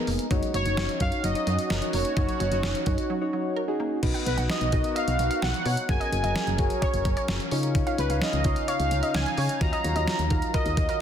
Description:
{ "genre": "synth-pop", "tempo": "129 BPM", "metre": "4/4", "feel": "straight", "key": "unclear", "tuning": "A4 = 440 Hz", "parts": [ { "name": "analog synth brass", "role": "melody", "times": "0.0-11.0 s", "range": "Cb5 to Bb5", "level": "-30 LUFS", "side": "equal", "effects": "chorus, tape echo" }, { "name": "soft electric-piano-like synth keys", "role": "accompaniment", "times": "0.0-11.0 s", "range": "Cb4 to F5", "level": "-32 LUFS", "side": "left 2 dB", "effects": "chorus" }, { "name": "sweeping resonant pad", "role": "sustained chords", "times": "0.0-11.0 s", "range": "Db3 to Bb5", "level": "-34 LUFS", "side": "equal", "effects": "chorus" }, { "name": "resonant blip pluck", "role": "arpeggios", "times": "0.0-4.0 s", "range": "Gb3 to Bb4", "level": "-36 LUFS", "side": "right 5 dB", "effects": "chorus, tape echo" }, { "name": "solid FM bass", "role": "bass", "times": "0.1-10.9 s", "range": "F1 to Db3", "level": "-28 LUFS", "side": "equal", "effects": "none" }, { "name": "detuned 8-bit digital drum machine", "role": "drums", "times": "0.1-11.0 s", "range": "crash cymbal, hi-hat, kick drum, snare drum", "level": "-28 LUFS", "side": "equal", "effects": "none" }, { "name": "warbly dusty pluck", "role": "second line", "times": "4.1-11.0 s", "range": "Bb4 to Gb5", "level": "-34 LUFS", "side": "right 2 dB", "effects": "chorus, tape echo" } ], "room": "light reverb", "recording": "dense, heavily limited modern master, faint mains hum", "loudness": "-23 LUFS", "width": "side -9 dB against mid", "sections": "0.0-4.0 A section; 4.0-11.0 B section", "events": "break 3.1-4.0", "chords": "0.3 Ebm7; 4.0 Cb; 5.9 Gbadd9; 7.5 Dbadd9; 9.6 Ebmadd9" }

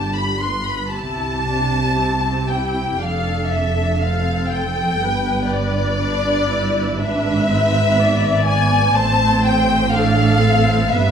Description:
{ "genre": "classical, slow romantic movement for string orchestra", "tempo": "60 BPM", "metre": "4/4", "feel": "rubato", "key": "unclear", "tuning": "A4 = 440 Hz", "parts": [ { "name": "warm studio violin section", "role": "melody", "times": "0.0-11.1 s", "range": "D5 to C6", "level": "-21 LUFS", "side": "left 4 dB", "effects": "none" }, { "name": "rich studio violin section", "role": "second line", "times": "0.0-11.1 s", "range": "D5 to C6", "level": "-24 LUFS", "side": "equal", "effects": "none" }, { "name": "dark studio viola section", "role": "accompaniment", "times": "0.0-11.1 s", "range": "B3 to D5", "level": "-24 LUFS", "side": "left 1 dB", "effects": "none" }, { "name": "warm studio cello section", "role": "bass", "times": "0.0-11.1 s", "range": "F2 to C3", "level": "-22 LUFS", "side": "right 3 dB", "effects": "none" }, { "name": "warm studio double bass section", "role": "bass", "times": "0.0-11.1 s", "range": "F1 to C2", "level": "-22 LUFS", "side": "right 3 dB", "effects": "none" } ], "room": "wet recital hall reverb, RT60 1.4 s", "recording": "none", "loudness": "-16 LUFS", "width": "side -8 dB against mid", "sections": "0.0-11.1 A section", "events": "none", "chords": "0.0 G; 1.0 C; 3.0 Dm/F; 5.0 G; 7.0 E7/G#; 9.0 Am" }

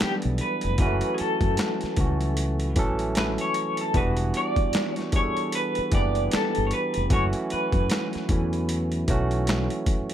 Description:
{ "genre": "R&B, neo-soul", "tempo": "76 BPM", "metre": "4/4", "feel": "swing 59% on 16ths", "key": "unclear", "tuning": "A4 = 440 Hz", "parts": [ { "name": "electric guitar through a small old amp", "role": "melody", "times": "0.0-9.0 s", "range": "G4 to D5", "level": "-28 LUFS", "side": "left 1 dB", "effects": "tremolo" }, { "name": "barky tine electric piano", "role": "accompaniment", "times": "0.0-10.1 s", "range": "E3 to A4", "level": "-28 LUFS", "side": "right 2 dB", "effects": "none" }, { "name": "mellow fretless electric bass", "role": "bass", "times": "0.0-9.7 s", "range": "E1 to F#2", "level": "-26 LUFS", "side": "equal", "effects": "wide subtle chorus" }, { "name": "boom bap sampler-style drum kit", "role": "drums", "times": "0.0-10.1 s", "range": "finger snaps, hi-hat, kick drum, snare drum", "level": "-26 LUFS", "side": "equal", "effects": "overdrive" } ], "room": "little or no reverb", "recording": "none", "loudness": "-22 LUFS", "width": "side -10 dB against mid", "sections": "0.0-10.1 A section", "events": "none", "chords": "0.0 Em9; 0.8 F#m7; 3.9 Em9; 7.1 F#m7" }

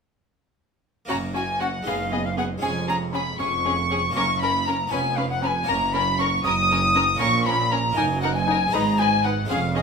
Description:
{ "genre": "classical, baroque-style concerto movement with solo episodes", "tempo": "79 BPM (dotted quarters)", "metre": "6/8", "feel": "straight", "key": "F# major", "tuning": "A4 = 440 Hz", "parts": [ { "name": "alto recorder", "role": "melody", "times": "1.1-9.8 s", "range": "D#5 to D#6", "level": "-26 LUFS", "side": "left 1 dB", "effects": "none" }, { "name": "warm chamber violin section", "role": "melody", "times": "1.1-9.8 s", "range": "D#5 to D#6", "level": "-24 LUFS", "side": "left 3 dB", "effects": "none" }, { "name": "rich chamber violin section", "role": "second line", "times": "1.1-9.8 s", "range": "F#4 to B4", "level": "-31 LUFS", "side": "left 2 dB", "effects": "none" }, { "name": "dark chamber viola section", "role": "accompaniment", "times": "1.1-9.8 s", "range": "B3 to D#4", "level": "-31 LUFS", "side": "equal", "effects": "none" }, { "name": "harpsichord", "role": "accompaniment", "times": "1.1-9.8 s", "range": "E#2 to C#5", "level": "-33 LUFS", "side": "equal", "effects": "none" }, { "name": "dark chamber cello section", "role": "bass", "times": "1.1-9.8 s", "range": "E#2 to A#2", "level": "-29 LUFS", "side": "right 4 dB", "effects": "none" }, { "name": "rich chamber double bass section", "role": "bass", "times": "1.1-9.8 s", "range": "E#1 to A#1", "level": "-29 LUFS", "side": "right 4 dB", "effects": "none" } ], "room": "moderate recital hall reverb, RT60 1.2 s", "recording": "minimal, uncompressed stereo recording", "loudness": "-20 LUFS", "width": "side -5 dB against mid", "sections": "1.1-9.8 A section", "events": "none", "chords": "1.1 F#; 1.9 G#m7/F#; 2.6 C#/E#; 4.2 F#; 4.9 C#7/E#; 5.7 F#; 7.2 A#m; 8.0 D#m/F#; 8.7 G#m" }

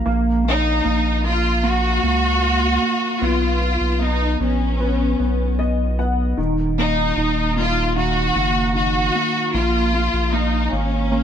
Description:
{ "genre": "pop ballad", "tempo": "76 BPM", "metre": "4/4", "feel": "straight", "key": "Eb minor", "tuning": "A4 = 436 Hz", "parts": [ { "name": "warm concert grand piano", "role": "accompaniment", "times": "0.0-11.2 s", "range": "Eb3 to F#5", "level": "-22 LUFS", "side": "right 1 dB", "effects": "analog chorus" }, { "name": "saturated sub bass", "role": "bass", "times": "0.0-11.2 s", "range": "Eb1 to Db2", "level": "-21 LUFS", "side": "equal", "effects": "none" }, { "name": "warm studio violin section", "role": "melody", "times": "0.5-11.2 s", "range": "C#4 to Gb4", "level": "-20 LUFS", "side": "left 1 dB", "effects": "ping-pong delay" } ], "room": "light reverb, studio reverb", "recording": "none", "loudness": "-17 LUFS", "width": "side -8 dB against mid", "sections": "0.0-11.2 A section", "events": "grand piano fill 5.2-6.4", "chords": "0.1 Ebm/Bb; 3.2 Bsus2; 6.4 Ebm; 9.5 Bbm" }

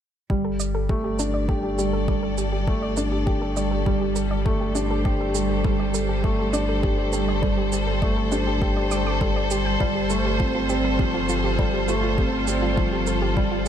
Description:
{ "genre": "piano and strings electronica", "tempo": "101 BPM", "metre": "4/4", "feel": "straight", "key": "unclear", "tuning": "A4 = 440 Hz", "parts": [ { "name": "rich chamber string section", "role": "sustained chords", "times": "0.3-13.7 s", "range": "G3 to D5", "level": "-28 LUFS", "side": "equal", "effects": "none" }, { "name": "soft round pluck", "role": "arpeggios", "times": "0.3-13.6 s", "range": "F4 to D6", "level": "-32 LUFS", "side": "right 1 dB", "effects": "chorus, sidechain pumping, ping-pong delay" }, { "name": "dark baby grand piano", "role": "riff", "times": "0.3-13.7 s", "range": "F3 to G4", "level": "-25 LUFS", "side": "equal", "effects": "ping-pong delay" }, { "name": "warm sub bass", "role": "bass", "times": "0.3-13.7 s", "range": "G1", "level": "-27 LUFS", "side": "equal", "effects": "sidechain pumping" }, { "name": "electronic kick drum", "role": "drums", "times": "0.3-13.5 s", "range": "none", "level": "-25 LUFS", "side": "equal", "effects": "none" }, { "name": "shaker", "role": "drums", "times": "0.6-13.2 s", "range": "none", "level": "-32 LUFS", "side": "right 10 dB", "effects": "none" } ], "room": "light reverb", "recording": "none", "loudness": "-20 LUFS", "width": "side -9 dB against mid", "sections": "0.3-13.7 A section", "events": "none", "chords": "0.3 Gsus2; 9.8 Fadd9/G" }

